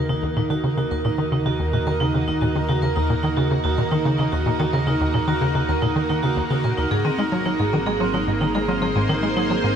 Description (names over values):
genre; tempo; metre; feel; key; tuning
ambient, sequencer-driven space music; 110 BPM; 4/4; straight; Eb dorian; A4 = 442 Hz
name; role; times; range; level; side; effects
string machine, full ensemble; sustained chords; 0.0-9.8 s; Bb3 to Eb5; -28 LUFS; equal; ensemble chorus
tight sequencer bass; riff; 0.0-9.8 s; Eb2 to Ab3; -22 LUFS; equal; ensemble chorus, tape echo
analog drone; bass; 0.0-9.8 s; Ab1 to Eb2; -30 LUFS; left 1 dB; chorus
bubbling stepped-filter texture; texture; 0.0-9.8 s; Bb4; -29 LUFS; right 2 dB; chorus, built-in reverb
vibraphone with hard mallets; arpeggios; 0.1-9.7 s; C4 to Bb4; -25 LUFS; moving between equal and right 6 dB; auto-pan, tape echo
room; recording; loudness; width
moderate huge ambient reverb, RT60 6.9 s; none; -19 LUFS; side -8 dB against mid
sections
0.0-9.8 A section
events
fade-in on string machine 0.0-9.8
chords
0.0 Ebm; 6.9 Abadd9